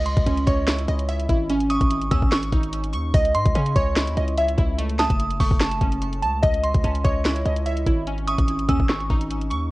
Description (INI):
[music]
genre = hip hop, trap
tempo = 146 BPM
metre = 4/4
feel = half-time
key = C# harmonic minor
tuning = A4 = 441 Hz
[part]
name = glassy digital keys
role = arpeggios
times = 0.0-9.7 s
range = A3 to C#6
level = -24 LUFS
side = right 1 dB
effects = chorus, phaser, digital delay
[part]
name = hard-hitting 808-style bass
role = bass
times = 0.0-9.7 s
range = F#1 to C#3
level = -24 LUFS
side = equal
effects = none
[part]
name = glassy synth bell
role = second line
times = 0.1-8.9 s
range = B#5 to E6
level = -30 LUFS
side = right 2 dB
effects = chorus, digital delay
[part]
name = trap drum kit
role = drums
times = 0.1-9.6 s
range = hi-hat, kick drum, snare drum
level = -22 LUFS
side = equal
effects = vintage 12-bit sampler grit
[sound]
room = little or no reverb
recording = worn, warbling old tape, cassette tape, warbly pitch drift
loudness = -19 LUFS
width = side -19 dB against mid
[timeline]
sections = 0.0-9.7 A section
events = none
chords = 0.0 C#madd9; 1.5 G#sus4; 3.1 C#madd9; 4.8 F#m; 6.4 C#madd9; 8.1 G#sus4